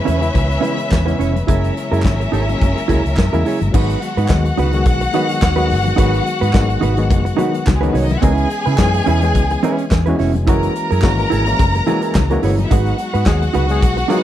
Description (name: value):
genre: disco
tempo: 107 BPM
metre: 4/4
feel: swing 56% on 16ths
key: G# minor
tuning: A4 = 438 Hz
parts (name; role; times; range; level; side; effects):
- warm studio violin section; second line; 0.0-14.2 s; G#3 to A#5; -22 LUFS; left 1 dB; tape echo
- barky reed electric piano; accompaniment; 0.0-14.2 s; C#3 to G#4; -21 LUFS; left 4 dB; overdrive, fast tremolo, tube saturation
- mellow electric guitar; accompaniment; 0.1-14.2 s; C#4 to C#5; -20 LUFS; right 10 dB; none
- vintage muted fingered electric bass; bass; 0.1-14.0 s; E#1 to C#3; -18 LUFS; equal; none
- modern studio drum kit; drums; 0.1-14.2 s; crash cymbal, handclaps, hi-hat, kick drum, snare drum; -18 LUFS; equal; none
- congas; percussion; 0.1-14.2 s; none; -26 LUFS; left 7 dB; none
- group handclap; percussion; 0.9-13.4 s; none; -31 LUFS; right 4 dB; none
room: little or no reverb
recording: none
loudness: -14 LUFS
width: side -12 dB against mid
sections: 0.0-3.7 A section; 3.7-14.2 B section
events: none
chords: 0.0 C#m7; 1.5 F#9; 3.7 G#m7; 8.2 C#m7; 10.5 F#9; 12.7 G#m7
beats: 0.35 0.91 | 1.48 2.04 2.60 3.17 | 3.73 4.29 4.86 5.42 | 5.98 6.54 7.11 7.67 | 8.23 8.79 9.35 9.91 | 10.47 11.03 11.59 12.15 | 12.71 13.27 13.82